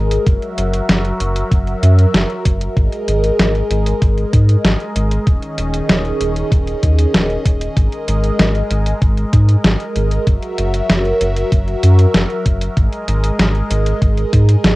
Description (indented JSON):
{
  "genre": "synthwave",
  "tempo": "96 BPM",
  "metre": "4/4",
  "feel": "straight",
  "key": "unclear",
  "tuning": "A4 = 440 Hz",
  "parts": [
    { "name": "phased analog pad", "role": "sustained chords", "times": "0.0-14.8 s", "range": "D#3 to E5", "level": "-20 LUFS", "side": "equal", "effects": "phaser, chorus, sidechain pumping, cassette tape" },
    { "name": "round analog bass", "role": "bass", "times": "0.0-14.8 s", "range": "D#1 to G#2", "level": "-15 LUFS", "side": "equal", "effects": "none" },
    { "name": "detuned 8-bit digital drum machine", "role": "drums", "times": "0.1-14.8 s", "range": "hi-hat, snare drum", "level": "-17 LUFS", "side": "equal", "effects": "cassette tape" },
    { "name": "electronic kick drum", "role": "drums", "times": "0.3-14.5 s", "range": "none", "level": "-14 LUFS", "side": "equal", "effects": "cassette tape" }
  ],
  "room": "light reverb",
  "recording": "home recording on cassette",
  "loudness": "-13 LUFS",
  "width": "side -19 dB against mid",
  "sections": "0.0-14.8 A section",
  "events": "none",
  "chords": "0.3 F#7; 2.8 G#sus2; 5.3 D#7sus4; 7.8 G#sus2; 10.3 F#7; 12.8 G#sus2",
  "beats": "| 0.27 0.89 1.52 2.14 | 2.77 3.39 4.02 4.64 | 5.27 5.89 6.52 7.14 | 7.77 8.39 9.02 9.64 | 10.27 10.89 11.52 12.14 | 12.77 13.39 14.02 14.64"
}